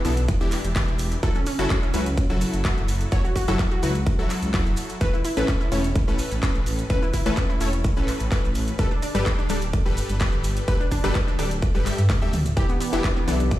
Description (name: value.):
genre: progressive house.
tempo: 127 BPM.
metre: 4/4.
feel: straight.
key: unclear.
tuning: A4 = 440 Hz.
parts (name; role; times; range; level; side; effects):
wide unison pluck; arpeggios; 0.0-13.4 s; B3 to C#5; -31 LUFS; equal; sidechain pumping, digital delay.
supersaw stab; stabs; 0.0-13.3 s; A2 to E5; -27 LUFS; left 1 dB; sidechain pumping, digital delay.
dark detuned saw bass; bass; 0.0-13.6 s; D1 to G2; -25 LUFS; equal; sidechain pumping.
big-room dance drum kit; drums; 0.0-13.6 s; handclaps, hi-hat, toms; -33 LUFS; equal; overdrive, studio reverb.
maracas; percussion; 0.1-13.6 s; none; -41 LUFS; right 4 dB; none.
electronic kick drum; drums; 0.3-13.6 s; none; -23 LUFS; equal; overdrive, studio reverb.
warm analog pad; sustained chords; 12.6-13.6 s; E3 to G4; -30 LUFS; right 1 dB; wide subtle chorus, sidechain pumping.
room: little or no reverb.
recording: played on a big sound system in a bare room, stone room reverb.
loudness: -20 LUFS.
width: side -14 dB against mid.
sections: 0.0-13.6 A section.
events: drum fill 12.1-12.6.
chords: 0.0 Em7; 1.2 F#m7; 5.0 Aadd9; 8.8 Gadd9; 12.6 Em7.